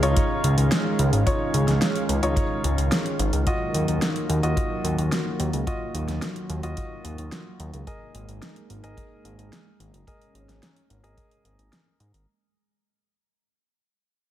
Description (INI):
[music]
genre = synthwave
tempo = 109 BPM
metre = 4/4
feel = straight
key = unclear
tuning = A4 = 439 Hz
[part]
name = lush unison pad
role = sustained chords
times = 0.0-12.3 s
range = Eb3 to F5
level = -29 LUFS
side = right 1 dB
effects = chorus, sidechain pumping
[part]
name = clear grand piano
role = stabs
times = 0.0-12.2 s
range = Eb4 to Eb5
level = -30 LUFS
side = equal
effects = low-pass filter, tape echo
[part]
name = fat analog bass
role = bass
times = 0.0-12.3 s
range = Gb1 to Ab2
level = -23 LUFS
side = equal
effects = sidechain pumping
[part]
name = pop drum kit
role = drums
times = 0.0-12.2 s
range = hi-hat, snare drum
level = -28 LUFS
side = equal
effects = overdrive, gated reverb
[part]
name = kick drum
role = drums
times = 0.2-11.3 s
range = none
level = -28 LUFS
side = equal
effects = none
[sound]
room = light reverb, studio ambience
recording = none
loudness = -21 LUFS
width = side -12 dB against mid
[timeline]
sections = 0.0-12.3 A section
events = fade-out 0.0-12.3; filter sweep on analog synth pad 0.0-12.3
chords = 0.0 Dbadd9; 3.5 Ebmadd9; 7.9 Absus2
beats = 0.17 0.72 | 1.27 1.82 2.37 2.92 | 3.47 4.02 4.57 5.12 | 5.67 6.22 6.77 7.32 | 7.87 8.42 8.97 9.52 | 10.07 10.62 11.18 11.72